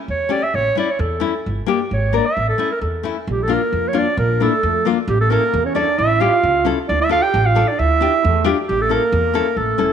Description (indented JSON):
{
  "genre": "klezmer",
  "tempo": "133 BPM",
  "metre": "2/4",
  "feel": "straight",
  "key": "A phrygian dominant",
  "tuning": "A4 = 440 Hz",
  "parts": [
    { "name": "warm clarinet", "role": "melody", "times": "0.1-9.9 s", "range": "G4 to G5", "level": "-18 LUFS", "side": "right 1 dB", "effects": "none" },
    { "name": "upright bass", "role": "bass", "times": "0.1-9.9 s", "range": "E1 to F2", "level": "-21 LUFS", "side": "right 1 dB", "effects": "none" },
    { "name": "nylon-string guitar", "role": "accompaniment", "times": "0.3-9.9 s", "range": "A3 to Bb4", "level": "-22 LUFS", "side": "left 9 dB", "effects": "none" },
    { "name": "mellow trombone", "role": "second line", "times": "3.3-9.9 s", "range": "G3 to G4", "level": "-23 LUFS", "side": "right 11 dB", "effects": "none" }
  ],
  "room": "moderate echo chamber reverb, RT60 1.8 s, small room ambience",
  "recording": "1960s-style stereo with parts hard left and right",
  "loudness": "-15 LUFS",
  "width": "side -8 dB against mid",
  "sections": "0.0-3.3 A section; 3.3-9.9 B section",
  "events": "none",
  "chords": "0.0 A; 1.4 Gm; 2.4 A; 3.3 Bb; 5.1 A; 6.9 Dm; 8.7 A"
}